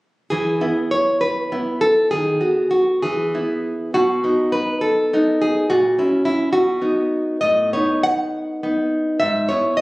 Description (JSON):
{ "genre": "romantic piece for solo classical guitar", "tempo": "61-74 BPM (dotted quarters)", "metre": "6/8", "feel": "rubato", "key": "E major", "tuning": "A4 = 440 Hz", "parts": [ { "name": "nylon-string guitar", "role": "solo", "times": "0.3-9.8 s", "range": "G#2 to F#5", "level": "-16 LUFS", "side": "equal", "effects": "slapback echo" } ], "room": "light reverb", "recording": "recorded on a phone in the room, club reverb, compression", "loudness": "-17 LUFS", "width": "side -21 dB against mid", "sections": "0.3-9.8 A section", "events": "none", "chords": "0.3 E; 2.1 B/D#; 3.0 E; 3.9 B; 5.7 F#7/A#; 6.5 B; 7.4 B7/A; 9.2 E/G#" }